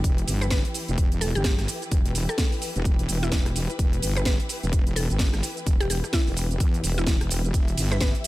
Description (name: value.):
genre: bass house.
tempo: 128 BPM.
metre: 4/4.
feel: swing 60% on 16ths.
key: E minor.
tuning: A4 = 441 Hz.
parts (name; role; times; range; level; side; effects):
dark studio string section; sustained chords; 0.0-8.3 s; E3 to E5; -36 LUFS; left 1 dB; sidechain pumping.
wobble bass; bass; 0.0-8.1 s; E1 to E2; -26 LUFS; equal; chorus, overdrive, sidechain pumping.
electronic kick drum; drums; 0.0-8.1 s; none; -23 LUFS; equal; small room ambience.
house drum kit; drums; 0.0-8.3 s; hi-hat, ride cymbal, rim click, shaker, snare drum; -30 LUFS; right 1 dB; small room ambience.
mallet-like synth pluck; melody; 0.4-8.1 s; E4 to B4; -33 LUFS; left 1 dB; chorus, digital delay.
room: digital ambience.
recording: none.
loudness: -22 LUFS.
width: side -17 dB against mid.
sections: 0.0-8.3 A section.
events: none.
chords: 0.0 Em.